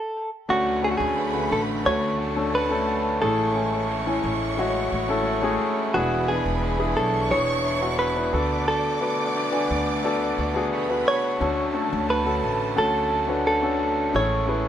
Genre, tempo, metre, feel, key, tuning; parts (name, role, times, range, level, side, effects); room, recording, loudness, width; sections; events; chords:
piano-driven pop; 88 BPM; 4/4; straight; A4 = 440 Hz
direct-recorded clean electric guitar; melody; 0.0-14.7 s; F#4 to C#5; -25 LUFS; right 1 dB
warm studio violin section; second line; 0.5-14.1 s; A4 to D6; -32 LUFS; equal
warm concert grand piano; accompaniment; 0.5-14.7 s; A2 to G#5; -25 LUFS; left 3 dB
biting overdriven guitar; riff; 0.5-14.7 s; E2 to F#4; -31 LUFS; right 6 dB
upright bass; bass; 0.5-14.7 s; E1 to D2; -30 LUFS; right 1 dB
moderate studio ambience, RT60 0.5 s; rough home demo mix; -21 LUFS; side -10 dB against mid
0.5-14.7 A section
stop 0.0-0.5
0.5 Dmaj7; 3.2 Amaj7; 5.9 E7; 8.3 Bm7/D; 11.4 Dmaj7; 14.1 Amaj7